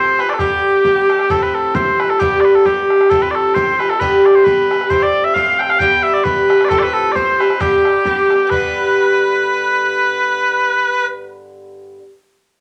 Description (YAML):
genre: celtic folk, Celtic polka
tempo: 133 BPM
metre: 2/4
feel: swing 55% on 8ths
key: G mixolydian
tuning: A4 = 442 Hz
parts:
  - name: mellow small bagpipes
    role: melody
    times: 0.0-11.1 s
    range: G4 to G5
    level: -18 LUFS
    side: equal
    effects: none
  - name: accordion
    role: second line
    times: 0.0-1.1, 4.9-11.1 s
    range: G4 to G5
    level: -23 LUFS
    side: equal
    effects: none
  - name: Irish bouzouki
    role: accompaniment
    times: 0.0-12.1 s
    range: G2 to G4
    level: -18 LUFS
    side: equal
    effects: none
  - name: bodhran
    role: percussion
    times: 0.2-8.7 s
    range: none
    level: -28 LUFS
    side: equal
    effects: none
room: wet club reverb, RT60 0.7 s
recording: none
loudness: -14 LUFS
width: mono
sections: 0.0-1.3 A section; 1.3-8.5 A section; 8.5-10.3 B section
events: none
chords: 0.4 G; 1.3 Fadd9; 2.2 G; 3.1 Fadd9; 4.0 G; 4.9 Fadd9; 5.8 G; 6.7 Fadd9; 7.6 G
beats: | 0.39 0.84 | 1.30 1.75 | 2.20 2.65 | 3.10 3.56 | 4.01 4.46 | 4.91 5.36 | 5.81 6.26 | 6.71 7.16 | 7.61 8.06 | 8.51 8.96 | 9.41 9.86